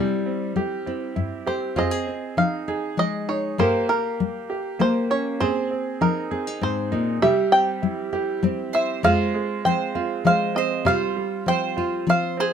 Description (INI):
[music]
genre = acoustic folk duo or small band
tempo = 99 BPM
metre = 3/4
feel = straight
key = F minor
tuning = A4 = 439 Hz
[part]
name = nylon-string guitar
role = accompaniment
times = 0.0-12.5 s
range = F2 to Bb4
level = -26 LUFS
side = left 4 dB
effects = none
[part]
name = bright upright piano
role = arpeggios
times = 0.0-12.5 s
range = G3 to Ab4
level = -26 LUFS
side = right 6 dB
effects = none
[part]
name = bluegrass banjo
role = melody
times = 1.5-12.5 s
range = Bb4 to G5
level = -23 LUFS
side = equal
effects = none
[part]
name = mandolin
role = second line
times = 8.7-12.5 s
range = Ab4 to C5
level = -28 LUFS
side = right 11 dB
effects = none
[sound]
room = light reverb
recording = minimal, uncompressed stereo recording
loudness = -20 LUFS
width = side -8 dB against mid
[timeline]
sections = 0.0-1.8 A section; 1.8-12.5 B section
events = none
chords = 0.0 C; 1.8 Fm7; 3.6 Gdim; 5.4 Fm7/Ab; 7.2 C; 9.0 Fm; 10.9 Csus4